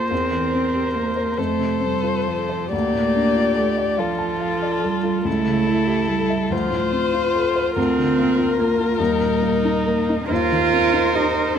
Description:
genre	classical, slow romantic movement for piano quartet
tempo	47 BPM (dotted quarters)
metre	6/8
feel	uneven beats, rubato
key	unclear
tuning	A4 = 437 Hz
part	dark violin	melody	0.0-11.6 s	A4 to D5	-23 LUFS	left 7 dB	none
part	dark cello	second line	0.0-11.6 s	F3 to F4	-22 LUFS	right 5 dB	none
part	dark baby grand piano	accompaniment	0.0-11.6 s	C#2 to A5	-25 LUFS	left 3 dB	none
part	warm viola	accompaniment	0.0-11.6 s	Eb4 to C5	-25 LUFS	right 2 dB	none
room	moderate recital hall reverb, RT60 1.5 s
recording	close, detailed microphones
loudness	-18 LUFS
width	side -8 dB against mid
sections	0.0-11.6 A section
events	none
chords	0.1 C7/E; 1.4 F; 2.7 Dm; 5.3 A7/C#; 6.5 Dm7; 7.8 Bb/D; 9.0 Eb; 10.3 Cm/Eb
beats	| 0.11 1.38 | 2.73 3.99 | 5.26 6.52 | 7.77 8.99 | 10.30 11.57

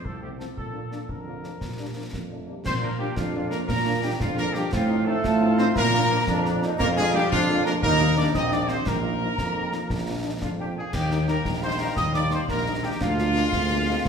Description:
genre	military-style march for wind band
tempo	116 BPM (dotted quarters)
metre	6/8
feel	straight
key	Bb major, Eb major from 6.8 s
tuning	A4 = 440 Hz
part	mellow trumpet section	melody	0.0-14.1 s	F4 to Eb5	-29 LUFS	equal	none
part	warm tuba	bass	0.0-14.1 s	Bb1 to Bb2	-26 LUFS	right 1 dB	none
part	concert bass drum, concert snare drum and clash cymbals	drums	0.0-14.1 s	none	-32 LUFS	left 1 dB	none
part	warm French horn section	accompaniment	0.2-13.9 s	F3 to F4	-34 LUFS	left 4 dB	none
part	warm euphonium	second line	1.1-14.1 s	D3 to Eb4	-31 LUFS	right 2 dB	none
part	flute section	second line	2.7-14.1 s	F5 to Eb6	-30 LUFS	left 2 dB	none
part	dark trombone section	sustained chords	3.2-14.1 s	G3 to F4	-31 LUFS	equal	none
room	wet recital hall reverb, RT60 1.6 s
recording	recorded in a church or concert hall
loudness	-21 LUFS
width	side -6 dB against mid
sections	0.0-2.6 A section; 2.6-10.9 B section; 10.9-14.1 A section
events	none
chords	0.0 F; 0.6 Bb; 4.7 F7/A; 5.8 Bb; 6.8 Bb7/F; 7.8 Eb; 8.9 Bbsus4; 9.9 Bb; 10.9 Eb; 13.0 Bb7/D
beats	0.05 | 0.57 1.09 | 1.61 2.13 | 2.65 3.17 | 3.69 4.20 | 4.72 5.24 | 5.76 6.28 | 6.79 7.31 | 7.83 8.35 | 8.87 9.38 | 9.90 10.42 | 10.94 11.46 | 11.97 12.49 | 13.01 13.53 | 14.05

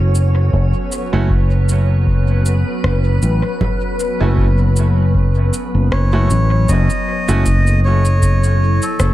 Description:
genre	ambient dub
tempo	78 BPM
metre	4/4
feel	swing 55% on 16ths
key	F# dorian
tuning	A4 = 436 Hz
part	soft additive organ-like pad	sustained chords	0.0-9.1 s	F#3 to C#5	-23 LUFS	left 2 dB	ensemble chorus, built-in reverb
part	fingered electric bass	bass	0.0-9.1 s	F#1 to A1	-13 LUFS	equal	none
part	drifting glass-harmonics texture	texture	0.0-6.7 s	C#4 to C#5	-29 LUFS	right 4 dB	chorus, built-in reverb
part	electronic shaker, rim click and congas	drums	0.1-9.1 s	none	-25 LUFS	right 1 dB	overdrive, dub echo
part	electronic kick drum	drums	0.5-9.1 s	none	-21 LUFS	equal	none
part	bright upright piano	stabs	1.1-7.4 s	A3 to F#4	-26 LUFS	right 4 dB	dub echo
part	melodica	melody	5.9-9.1 s	A4 to D#5	-20 LUFS	equal	dub echo
room	digital ambience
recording	echo-heavy mix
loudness	-13 LUFS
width	side -15 dB against mid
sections	0.0-6.7 A section; 6.7-9.1 B section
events	none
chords	0.0 F#m; 6.7 F#m7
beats	| 0.54 1.30 2.07 2.84 | 3.61 4.38 5.15 5.92 | 6.69 7.46 8.23 9.00

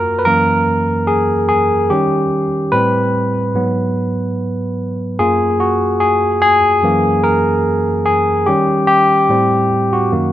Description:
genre	R&B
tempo	73 BPM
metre	4/4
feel	swing 56% on 16ths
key	unclear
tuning	A4 = 439 Hz
part	barky tine electric piano	solo	0.0-10.3 s	F#2 to B4	-12 LUFS	equal	tape echo
room	little or no reverb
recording	rough home demo mix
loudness	-12 LUFS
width	side -12 dB against mid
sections	0.0-10.3 A section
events	tine electric piano solo 0.0-10.3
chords	0.2 F#7; 1.9 D#7; 2.7 Am9; 3.5 G#m7; 5.2 F#maj7; 6.8 F#7; 8.5 D#7; 9.3 Am7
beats	0.24 1.07 | 1.89 2.71 3.53 4.35 | 5.18 6.00 6.82 7.64 | 8.46 9.29 10.11

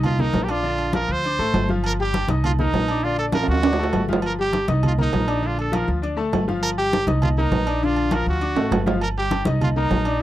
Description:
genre	latin, salsa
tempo	201 BPM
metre	4/4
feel	straight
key	unclear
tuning	A4 = 440 Hz
part	bright trumpet	melody	0.0-10.2 s	Eb4 to C5	-25 LUFS	right 3 dB	none
part	bright baby grand piano	accompaniment	0.0-10.2 s	D3 to Eb6	-25 LUFS	left 4 dB	none
part	upright bass	bass	0.0-10.2 s	G1 to D2	-24 LUFS	equal	none
part	agogo bells and timbales	percussion	0.0-10.2 s	none	-27 LUFS	right 6 dB	none
part	congas	percussion	0.0-10.2 s	none	-26 LUFS	left 1 dB	none
room	light reverb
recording	dry, close 1970s-style studio recording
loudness	-19 LUFS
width	side -14 dB against mid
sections	0.0-9.0 A section; 9.0-10.2 A section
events	drum fill 3.3-4.2, 8.6-9.0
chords	0.0 Cm7; 0.6 Bb; 1.2 D5; 1.8 Eb69/G; 2.4 Cm7; 3.0 Bb; 3.6 D; 4.2 Eb69/G; 4.8 Cm7; 5.4 Bb; 6.0 D5; 6.6 Eb69/G; 7.2 Cm7; 7.8 Bb; 8.4 D; 9.0 Eb6/G; 9.6 Cm7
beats	0.04 0.34 | 0.64 0.94 1.24 1.54 | 1.84 2.14 2.44 2.74 | 3.04 3.34 3.64 3.94 | 4.23 4.53 4.83 5.13 | 5.43 5.73 6.03 6.33 | 6.63 6.93 7.22 7.52 | 7.82 8.12 8.42 8.72 | 9.02 9.32 9.61 9.91 | 10.21

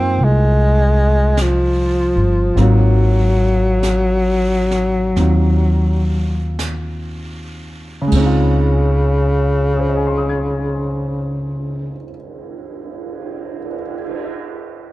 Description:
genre	jazz ballad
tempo	38-52 BPM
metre	4/4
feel	swing 66% on 8ths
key	Db major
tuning	A4 = 445 Hz
part	mellow tenor saxophone	melody	0.0-12.0 s	Db3 to C4	-17 LUFS	left 1 dB	none
part	clear concert grand piano	accompaniment	0.0-14.9 s	Db3 to Ab6	-24 LUFS	right 1 dB	none
part	upright bass	bass	0.0-12.0 s	G1 to Gb2	-16 LUFS	equal	none
part	jazz brush drum kit	drums	0.2-14.2 s	brushed snare drum, crash cymbal, cymbal swell, hi-hat, kick drum, snare drum	-28 LUFS	right 3 dB	none
room	little or no reverb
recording	dark, warm production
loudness	-14 LUFS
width	side -17 dB against mid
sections	0.0-8.1 A section; 8.1-14.5 B section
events	slowing down 0.0-8.1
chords	0.0 Fm7; 2.6 Ab13; 8.1 Dbmaj9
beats	0.19 1.35 | 2.56 3.83 5.16 6.58 | 8.11 9.70 11.29 12.88

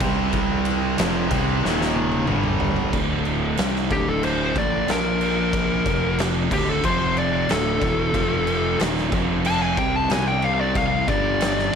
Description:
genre	stoner and doom metal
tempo	92 BPM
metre	4/4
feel	straight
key	D phrygian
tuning	A4 = 440 Hz
part	high-gain distorted guitar	riff	0.0-2.9 s	Eb2 to C4	-26 LUFS	right 1 dB	distortion
part	thick fuzz guitar	riff	0.0-11.7 s	D2 to C4	-27 LUFS	left 10 dB	distortion
part	thick fuzz guitar	riff	0.0-11.7 s	D2 to C4	-26 LUFS	right 10 dB	distortion
part	fuzz fingered electric bass	bass	0.0-11.7 s	D1 to C2	-28 LUFS	equal	overdrive
part	oversized low-tuned drum kit	drums	0.0-11.7 s	crash cymbal, kick drum, ride cymbal, snare drum, toms	-25 LUFS	equal	none
part	fuzz lead guitar	melody	3.9-11.8 s	G4 to A5	-24 LUFS	left 3 dB	distortion
room	light reverb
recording	none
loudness	-19 LUFS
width	side -7 dB against mid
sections	0.0-2.9 A section; 2.9-11.8 B section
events	drum fill 1.6-2.9; lead electric guitar solo 2.9-11.8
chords	0.0 C5; 1.0 F5; 1.6 Eb5; 2.3 G5; 2.9 D5; 4.9 Bb5; 5.9 F5; 6.5 D5; 6.8 F5; 7.5 D5; 8.2 F5; 10.1 C5; 11.1 G5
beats	| 0.34 0.98 1.63 2.28 | 2.94 3.59 4.24 4.89 | 5.54 6.20 6.85 7.50 | 8.15 8.81 9.46 10.11 | 10.77 11.42

